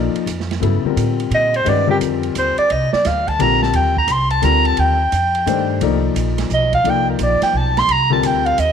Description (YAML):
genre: modal jazz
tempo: 174 BPM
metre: 3/4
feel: swing 65% on 8ths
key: C dorian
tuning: A4 = 441 Hz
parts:
  - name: warm concert grand piano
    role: accompaniment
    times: 0.0-8.6 s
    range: Db3 to D5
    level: -20 LUFS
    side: left 11 dB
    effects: none
  - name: upright bass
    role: bass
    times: 0.0-8.7 s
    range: Bb1 to Bb2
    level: -20 LUFS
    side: right 2 dB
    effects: none
  - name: open jazz drum kit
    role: drums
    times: 0.2-8.7 s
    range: hi-hat, kick drum, ride cymbal, snare drum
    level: -29 LUFS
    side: right 8 dB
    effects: none
  - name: mellow soprano saxophone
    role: melody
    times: 1.3-8.7 s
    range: G4 to C6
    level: -16 LUFS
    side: right 1 dB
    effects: none
room: light reverb, studio reverb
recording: 1960s-style stereo with parts hard left and right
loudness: -14 LUFS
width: side -7 dB against mid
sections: 0.0-8.7 A section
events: soprano saxophone solo 0.0-8.7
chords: 0.0 Cm11